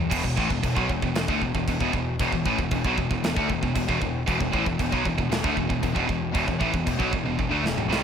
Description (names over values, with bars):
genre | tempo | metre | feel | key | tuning
heavy metal | 115 BPM | 4/4 | straight | unclear | A4 = 440 Hz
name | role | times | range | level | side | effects
heavy high-gain guitar | riff | 0.0-8.0 s | E2 to A3 | -28 LUFS | right 10 dB | distortion
sludgy distorted guitar | riff | 0.0-8.0 s | E2 to A3 | -29 LUFS | left 9 dB | overdrive
cranked stack guitar | riff | 0.1-8.0 s | E2 to A3 | -32 LUFS | right 1 dB | overdrive
growling picked electric bass | bass | 0.1-8.0 s | E1 to D2 | -31 LUFS | equal | overdrive
big rock drum kit | drums | 0.1-8.0 s | china cymbal, crash cymbal, kick drum, snare drum, toms | -28 LUFS | equal | none
room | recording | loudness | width
light reverb | none | -22 LUFS | side -8 dB against mid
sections
0.1-8.0 A section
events
drum fill 7.4-8.0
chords
0.1 E5